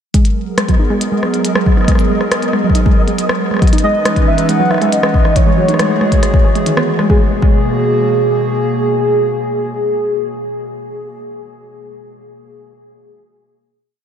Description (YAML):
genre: IDM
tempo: 138 BPM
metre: 4/4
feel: straight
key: G# minor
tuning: A4 = 440 Hz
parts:
  - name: hollow soft pad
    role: sustained chords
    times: 0.1-10.8 s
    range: B2 to B4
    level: -18 LUFS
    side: right 1 dB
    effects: chorus
  - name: warbly dusty pluck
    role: arpeggios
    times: 0.1-7.5 s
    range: D#3 to G#4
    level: -19 LUFS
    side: right 1 dB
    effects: chorus, ping-pong delay
  - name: electronic kick drum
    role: drums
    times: 0.1-7.6 s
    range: none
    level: -12 LUFS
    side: left 1 dB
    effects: none
  - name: glitchy drum kit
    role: drums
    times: 0.1-7.1 s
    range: hi-hat, rim click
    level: -20 LUFS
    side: equal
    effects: tape echo
  - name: flickering grainy texture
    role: texture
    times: 0.7-7.1 s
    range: D#5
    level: -28 LUFS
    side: right 1 dB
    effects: built-in reverb, ensemble chorus
  - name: warm velvety synth lead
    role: melody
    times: 3.8-11.1 s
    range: G#4 to F#5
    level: -17 LUFS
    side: equal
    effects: chorus, vintage 12-bit sampler grit, ping-pong delay
room: moderate huge ambient reverb, RT60 7.6 s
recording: dreamy mix soaked in reverb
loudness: -11 LUFS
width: side -8 dB against mid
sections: 0.1-7.1 groove; 7.1-10.6 final chord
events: none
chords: 0.1 G#m9; 3.6 C#m9; 5.4 F#m9; 7.1 G#m9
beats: | 0.14 0.58 1.01 1.45 | 1.88 2.32 2.75 3.19 | 3.62 4.05 4.49 4.92 | 5.36 5.79 6.23 6.66 | 7.10 7.53 7.97 8.40 | 8.84 9.27 9.71 10.14